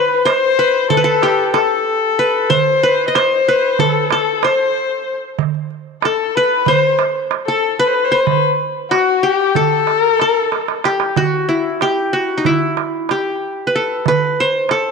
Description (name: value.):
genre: Turkish makam ensemble.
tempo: 187 BPM (eighths).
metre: 9/8.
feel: straight.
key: A makam nikriz.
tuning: A4 = 441 Hz.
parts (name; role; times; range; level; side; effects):
qanun; melody; 0.0-14.9 s; D#4 to D#5; -16 LUFS; equal; none.
clear kamancheh; second line; 0.0-10.8 s; F#4 to D#5; -16 LUFS; left 7 dB; none.
darbuka; percussion; 0.3-14.8 s; none; -20 LUFS; right 15 dB; none.
room: wet plate reverb, RT60 2.2 s.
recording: 1960s-style stereo with parts hard left and right.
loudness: -13 LUFS.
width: side -4 dB against mid.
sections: 0.0-11.2 A section; 11.2-14.9 B section.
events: drum fill 10.5-11.2.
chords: none.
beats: 0.25 0.57 0.89 1.22 1.53 1.86 2.18 | 2.50 2.82 3.14 3.46 3.78 4.10 4.42 4.74 5.06 | 5.38 5.70 6.03 6.34 6.67 6.99 7.31 7.63 7.95 | 8.27 8.59 8.91 9.23 9.55 9.87 10.19 10.52 10.84 | 11.16 11.48 11.80 12.12 12.44 12.76 13.09 13.41 13.73 | 14.05 14.37 14.69.